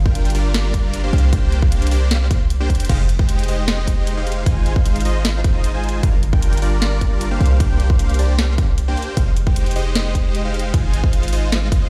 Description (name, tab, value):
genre	future bass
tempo	153 BPM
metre	4/4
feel	half-time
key	F dorian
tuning	A4 = 439 Hz
part	warm 808-style bass	bass	0.0-11.9 s	F1 to C2	-21 LUFS	equal	sidechain pumping
part	supersaw chords	riff	0.1-11.9 s	G3 to Ab5	-27 LUFS	equal	vintage 12-bit sampler grit, sidechain pumping, dub echo
part	electronic kick drum	drums	0.1-11.8 s	none	-20 LUFS	equal	none
part	trap drum kit	drums	0.2-11.8 s	crash cymbal, hi-hat, snare drum	-28 LUFS	equal	none
room	digital ambience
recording	played on a big sound system in a bare room, stone room reverb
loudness	-18 LUFS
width	mono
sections	0.0-2.9 A section; 2.9-11.9 A section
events	drop 0.0-2.9, 2.9-11.9; drum fill 2.7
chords	0.0 Gm7; 1.1 C9sus4; 2.9 Fm9; 4.5 Ab6; 6.0 Gm7; 7.4 C9sus4; 9.2 Fm9; 10.7 Ab6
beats	0.15 0.54 0.93 | 1.33 1.72 2.11 2.50 | 2.90 3.29 3.68 4.07 | 4.46 4.86 5.25 5.64 | 6.03 6.42 6.82 7.21 | 7.60 7.99 8.38 8.78 | 9.17 9.56 9.95 10.35 | 10.74 11.13 11.52